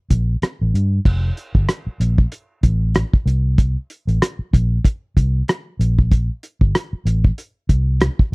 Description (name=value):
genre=lush 1970s-style soul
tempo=95 BPM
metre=4/4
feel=swing 58% on 16ths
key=unclear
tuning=A4 = 441 Hz
part: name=vintage muted fingered electric bass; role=bass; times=0.1-8.3 s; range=F1 to G2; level=-17 LUFS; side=equal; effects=none
part: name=cloth-damped thuddy drum kit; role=drums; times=0.1-8.3 s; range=crash cymbal, hi-hat, kick drum, rim click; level=-15 LUFS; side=equal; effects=none
room=little or no reverb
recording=dry, close 1970s-style studio recording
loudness=-16 LUFS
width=side -35 dB against mid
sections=0.0-1.1 A section; 1.1-8.3 A section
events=none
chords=none